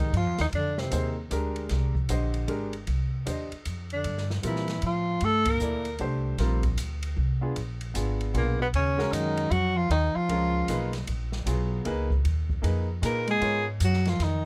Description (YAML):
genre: modal jazz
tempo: 154 BPM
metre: 3/4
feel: swing 64% on 8ths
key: F dorian, Eb minor from 8.7 s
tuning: A4 = 440 Hz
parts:
  - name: mellow tenor saxophone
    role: melody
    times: 0.0-1.2, 3.9-6.0, 8.4-10.9, 13.1-14.5 s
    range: Bb3 to Bb4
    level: -30 LUFS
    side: equal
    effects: none
  - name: mellow bass clarinet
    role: second line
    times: 0.0-1.2, 3.9-6.0, 8.3-10.9, 13.0-14.5 s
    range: Bb2 to Bb3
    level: -33 LUFS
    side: equal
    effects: none
  - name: clear concert grand piano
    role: accompaniment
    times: 0.0-13.6 s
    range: Bb2 to Eb5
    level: -35 LUFS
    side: equal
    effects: none
  - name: upright bass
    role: bass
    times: 0.0-14.5 s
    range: Ab1 to Bb2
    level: -31 LUFS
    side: equal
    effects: none
  - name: open jazz drum kit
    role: drums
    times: 0.0-14.3 s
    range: hi-hat, kick drum, ride cymbal, snare drum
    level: -39 LUFS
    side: equal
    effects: none
room: little or no reverb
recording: close, detailed microphones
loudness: -27 LUFS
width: mono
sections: 0.0-8.7 A section; 8.7-14.5 B section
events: band accent 5.4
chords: 0.0 Fm11; 4.0 Gm11; 7.6 Bb7b9; 8.7 Ebm9; 13.4 Abm9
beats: 0.14 | 0.53 0.92 1.31 | 1.71 2.10 2.49 | 2.88 3.27 3.66 | 4.05 4.44 4.83 | 5.22 5.61 6.00 | 6.39 6.78 7.17 | 7.56 7.95 8.34 | 8.73 9.12 9.51 | 9.90 10.29 10.69 | 11.07 11.47 11.86 | 12.25 12.64 13.03 | 13.42 13.81 14.20